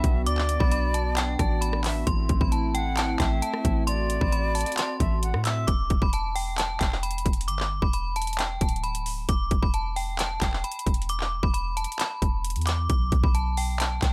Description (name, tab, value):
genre	hip hop, trap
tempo	133 BPM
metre	4/4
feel	half-time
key	E minor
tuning	A4 = 440 Hz
part	jazz flute	second line	0.0-5.7 s	D5 to F#5	-35 LUFS	equal	tape echo
part	hollow soft pad	sustained chords	0.0-5.7 s	A3 to F#4	-35 LUFS	equal	chorus
part	warm 808-style bass	bass	0.0-14.1 s	D1 to A2	-30 LUFS	equal	none
part	trap drum kit	drums	0.0-14.1 s	handclaps, hi-hat, kick drum, rim click	-29 LUFS	equal	none
part	metallic FM bell	melody	0.3-14.1 s	G5 to E6	-33 LUFS	equal	chorus, tape echo
room	little or no reverb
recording	none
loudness	-26 LUFS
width	mono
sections	0.0-5.7 A section; 5.7-14.1 B section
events	none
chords	0.0 Bm; 2.1 Am; 5.7 E7(no3); 12.9 Bm